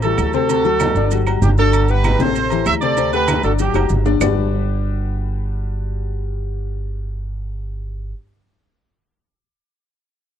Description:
latin, salsa; 193 BPM; 4/4; straight; G major; A4 = 445 Hz
bright horn section; melody; 0.0-3.9 s; D4 to E5; -19 LUFS; right 5 dB
clear grand piano; accompaniment; 0.0-8.1 s; C3 to F#5; -22 LUFS; left 18 dB
upright bass; bass; 0.0-8.1 s; F#1 to D2; -20 LUFS; right 1 dB
agogo bells and timbales; percussion; 0.0-4.3 s; -27 LUFS; right 7 dB
congas; percussion; 0.0-4.3 s; -26 LUFS; equal
maracas; percussion; 0.0-4.3 s; -34 LUFS; right 24 dB
claves; percussion; 0.2-4.3 s; -27 LUFS; right 7 dB
little or no reverb; dry, close 1970s-style studio recording; -16 LUFS; side -9 dB against mid
0.0-4.2 A section; 4.2-6.7 B section
drum fill 3.7-4.2
0.5 D7; 2.4 Am7; 3.0 D7; 3.6 G5; 4.2 Gmaj7

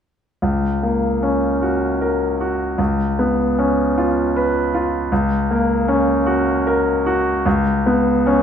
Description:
classical; 77 BPM; 3/4; rubato; F# major; A4 = 440 Hz
bright concert grand piano; accompaniment; 0.4-8.4 s; C#2 to B4; -16 LUFS; equal
moderate recital hall reverb, RT60 1.6 s; -16 LUFS; side -8 dB against mid
0.4-8.4 A section
0.4 F#/C#; 2.8 C#7; 5.1 F#/C#; 7.5 C#7(no3)

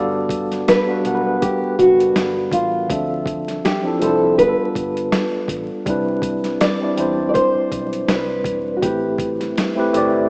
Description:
lo-fi hip hop; 81 BPM; 4/4; swing 55% on 16ths; G major; A4 = 439 Hz
mellow tine electric piano; accompaniment; 0.0-10.3 s; F3 to F#5; -20 LUFS; equal; medium stereo tremolo, cassette tape, low-pass filter
vintage muted fingered electric bass; bass; 0.0-10.3 s; E1 to E2; -34 LUFS; equal
boom bap sampler-style drum kit; drums; 0.3-10.1 s; hi-hat, kick drum, snare drum; -23 LUFS; equal; vintage 12-bit sampler grit
nylon-string guitar; melody; 0.7-9.9 s; F4 to D5; -18 LUFS; equal; low-pass filter, analog delay
moderate lush hall reverb, RT60 2.1 s; rough home demo mix, vinyl crackle, small speaker sound; -16 LUFS; side -33 dB against mid
0.0-10.3 A section
0.0 Gmaj9; 2.9 Dm7; 4.4 G7; 5.9 Cmaj9; 8.8 Am7

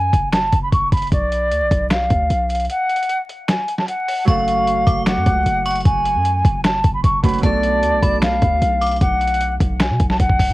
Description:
hip hop, trap; 152 BPM; 4/4; half-time; F# harmonic minor; A4 = 442 Hz
mellow silver concert flute; melody; 0.0-10.5 s; D5 to C#6; -19 LUFS; equal; low-pass filter, cassette tape, tape echo
warm 808-style bass; bass; 0.0-10.5 s; F#1 to B2; -21 LUFS; equal
dusty soul sampler-style drum kit; drums; 0.1-10.5 s; finger snaps, hi-hat, kick drum, snare drum; -19 LUFS; equal; overdrive, cassette tape
Celtic harp; accompaniment; 4.2-10.5 s; F#3 to B4; -25 LUFS; right 5 dB; low-pass filter, cassette tape
metallic FM bell; second line; 4.3-9.0 s; A5 to D6; -27 LUFS; equal; chorus, phaser, cassette tape, tape echo
little or no reverb; home recording on cassette, vinyl crackle; -15 LUFS; side -18 dB against mid
0.0-4.3 A section; 4.3-10.5 B section
break 2.7-4.3
0.0 F#5; 1.1 Bm; 4.3 F#m; 7.4 Bm7

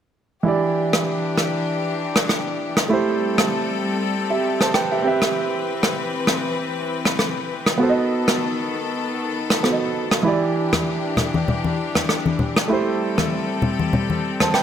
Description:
afrobeats; 98 BPM; 4/4; swing 55% on 16ths; E minor; A4 = 440 Hz
warm grand piano; accompaniment; 0.4-14.6 s; E3 to A5; -22 LUFS; right 3 dB
bright studio string section; sustained chords; 0.5-14.6 s; D#3 to B4; -25 LUFS; left 4 dB
rim click; drums; 0.9-14.6 s; -22 LUFS; equal
congas; percussion; 10.7-14.5 s; -23 LUFS; left 3 dB
moderate lush hall reverb, RT60 2.0 s, small room ambience; -19 LUFS; side -9 dB against mid
0.5-14.6 A section
0.5 Em7; 2.9 Am7; 5.1 Cmaj7; 7.8 B7; 10.3 Em7; 12.7 Am7

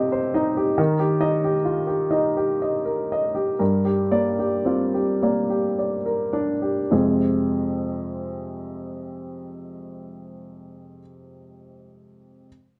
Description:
neoclassical minimalist piano; 34-48 BPM (dotted quarters); 6/8; rubato; F dorian; A4 = 439 Hz
warm upright piano; solo; 0.0-12.5 s; F2 to Eb5; -24 LUFS; equal
light reverb; dark, warm production; -23 LUFS; mono
0.0-6.9 A section; 6.9-10.3 B section
slowing down 0.0-6.9
0.0 Cm; 0.8 Eb; 3.6 Gm; 6.9 Fm

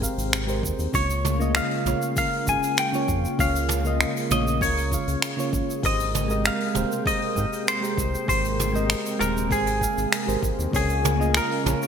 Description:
sunset chillout; 98 BPM; 4/4; straight; A4 = 439 Hz
semi-hollow electric guitar; melody; 0.0-11.9 s; Ab4 to Ab5; -26 LUFS; left 1 dB; wide subtle chorus, ping-pong delay
soft electric-piano-like synth keys; accompaniment; 0.0-11.9 s; Db3 to G5; -29 LUFS; right 1 dB; chorus, auto-pan, ping-pong delay
lush unison pad; sustained chords; 0.0-11.9 s; C3 to G5; -30 LUFS; right 1 dB; chorus
round analog bass; bass; 0.0-11.7 s; Eb1 to Ab2; -27 LUFS; equal
electronic kick drum; drums; 0.0-10.9 s; -29 LUFS; equal
jazz brush drum kit; drums; 0.0-11.9 s; finger snaps, hi-hat, shaker, toms; -28 LUFS; right 1 dB; gated reverb
moderate lush hall reverb, RT60 1.6 s; bright 1980s-style digital production; -21 LUFS; side -7 dB against mid
0.0-11.9 A section
0.0 Abmaj9; 0.9 Db6; 5.8 Abmaj9; 10.7 Db6

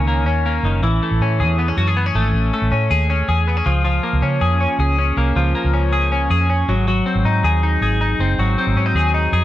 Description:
jangly indie pop; 159 BPM; 4/4; straight; Db major; A4 = 441 Hz
twelve-string electric guitar; arpeggios; 0.0-9.4 s; Eb3 to G#4; -18 LUFS; left 2 dB; lush chorus, slapback echo
vintage muted fingered electric bass; bass; 0.0-9.4 s; Gb1 to Db3; -18 LUFS; equal
little or no reverb; dry, close 1970s-style studio recording; -15 LUFS; side -14 dB against mid
0.0-9.4 A section
0.0 Gb6; 0.8 Amaj7; 3.7 Db6; 6.7 Ab7

